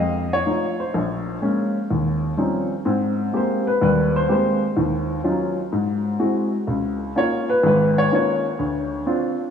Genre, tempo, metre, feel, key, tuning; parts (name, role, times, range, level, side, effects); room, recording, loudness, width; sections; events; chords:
solo jazz; 125 BPM; 4/4; swing 68% on 8ths; Ab major; A4 = 439 Hz
warm baby grand piano; solo; 0.0-9.4 s; Ab1 to Eb5; -19 LUFS; left 1 dB; wide subtle chorus, tape echo
wet plate reverb, RT60 3.0 s; dreamy mix soaked in reverb; -19 LUFS; side -7 dB against mid
0.0-2.9 A section; 2.9-9.5 B section
grand piano solo 2.9-9.5
0.0 F7; 0.9 Bbm7; 1.9 Eb13; 2.9 Abmaj9; 4.8 Ebm9; 5.7 Abaug7; 6.7 Db69; 8.6 Dm7